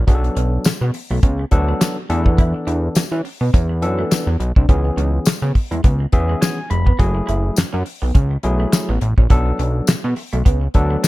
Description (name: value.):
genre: early-eighties boogie funk.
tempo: 104 BPM.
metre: 4/4.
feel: swing 56% on 16ths.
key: F# minor.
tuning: A4 = 439 Hz.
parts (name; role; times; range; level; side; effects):
electric guitar through a small old amp; riff; 0.0-11.1 s; G#3 to F#4; -28 LUFS; right 2 dB; lush chorus.
fat analog bass; bass; 0.0-11.0 s; E#1 to E3; -18 LUFS; equal; none.
barky tine electric piano; accompaniment; 0.1-11.1 s; E3 to B5; -23 LUFS; left 2 dB; overdrive.
damped 70s drum kit; drums; 0.1-11.1 s; handclaps, hi-hat, kick drum, snare drum; -16 LUFS; equal; gated reverb.
tambourine; percussion; 0.6-11.1 s; none; -26 LUFS; left 10 dB; none.
room: little or no reverb.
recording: none.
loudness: -15 LUFS.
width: side -18 dB against mid.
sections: 0.0-11.1 A section.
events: tine electric piano fill 5.8-7.0.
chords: 0.1 Bm7; 2.1 E7sus4; 4.7 C#m7; 7.0 F#m9; 9.3 Bm7.